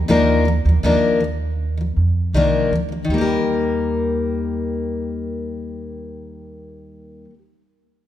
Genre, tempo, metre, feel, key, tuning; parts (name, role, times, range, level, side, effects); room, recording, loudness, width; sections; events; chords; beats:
pop; 80 BPM; 4/4; straight; Eb major; A4 = 440 Hz
picked steel-string acoustic guitar; accompaniment; 0.0-7.4 s; Eb3 to Bb4; -19 LUFS; left 3 dB
upright bass; bass; 0.0-7.2 s; C2 to F2; -21 LUFS; right 2 dB
moderate scoring stage reverb, RT60 2.1 s; recorded in a church or concert hall; -17 LUFS; side -12 dB against mid
0.0-3.1 A section; 3.1-6.1 B section
0.0 Bb/Eb; 3.1 Eb
| 0.09 0.84 1.59 2.34 | 3.09 3.84 4.60 5.35